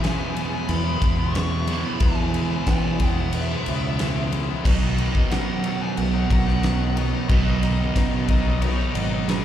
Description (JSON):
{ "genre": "classic rock", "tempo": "91 BPM", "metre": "4/4", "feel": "straight", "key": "B major", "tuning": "A4 = 442 Hz", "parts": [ { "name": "dark smooth lead guitar", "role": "melody", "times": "0.0-7.6 s", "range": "D#5 to C#6", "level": "-33 LUFS", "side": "right 1 dB", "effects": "overdrive, slapback echo, digital delay" }, { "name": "mellow reed electric piano", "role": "accompaniment", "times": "0.0-9.4 s", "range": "B3 to B4", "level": "-36 LUFS", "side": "left 2 dB", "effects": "fast tremolo, slapback echo" }, { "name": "overdriven electric guitar", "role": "riff", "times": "0.0-9.4 s", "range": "B2 to E4", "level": "-30 LUFS", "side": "left 12 dB", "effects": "slapback echo" }, { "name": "sludgy distorted guitar", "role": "riff", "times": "0.0-9.4 s", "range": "E2 to B3", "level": "-27 LUFS", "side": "right 9 dB", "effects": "overdrive" }, { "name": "fuzz fingered electric bass", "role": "bass", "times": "0.0-9.4 s", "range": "G#1 to E3", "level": "-24 LUFS", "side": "equal", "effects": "overdrive" }, { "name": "huge arena drum kit", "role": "drums", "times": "0.0-9.4 s", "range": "crash cymbal, kick drum, ride cymbal, snare drum", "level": "-24 LUFS", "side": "left 1 dB", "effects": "none" }, { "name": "overdriven slide guitar", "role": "second line", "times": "7.6-9.4 s", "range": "G#4 to D#5", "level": "-33 LUFS", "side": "left 3 dB", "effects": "slapback echo" } ], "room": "studio ambience", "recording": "live gig heard through the venue's PA, club reverb", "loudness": "-20 LUFS", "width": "side -11 dB against mid", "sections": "0.0-9.4 A section", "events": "none", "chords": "0.0 E; 4.7 B", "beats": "0.03 0.69 1.35 | 2.01 2.67 3.33 4.00 | 4.66 5.32 5.98 6.64 | 7.30 7.96 8.62 9.29" }